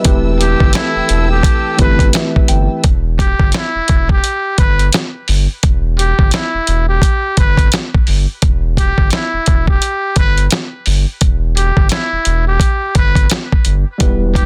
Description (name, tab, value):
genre	hip hop, boom-bap hip-hop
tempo	86 BPM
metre	4/4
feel	swing 59% on 16ths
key	E minor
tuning	A4 = 438 Hz
part	tine electric piano	accompaniment	0.0-2.9, 14.0-14.5 s	E3 to G5	-20 LUFS	equal	cassette tape, high-pass filter, low-pass filter
part	warm studio string section	sustained chords	0.0-2.8 s	A4 to E6	-29 LUFS	equal	high-pass filter, low-pass filter
part	dusty soul sampler-style drum kit	drums	0.0-14.5 s	hi-hat, kick drum, snare drum	-15 LUFS	equal	none
part	round analog bass	bass	0.1-14.5 s	E1 to G1	-18 LUFS	equal	none
part	trumpet with metal mute	melody	0.4-14.5 s	E4 to B4	-21 LUFS	equal	high-pass filter, low-pass filter, delay
room	little or no reverb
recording	dense, heavily limited modern master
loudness	-14 LUFS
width	mono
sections	0.0-2.8 A section; 2.8-14.5 B section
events	none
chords	0.1 Am7/E; 2.8 Em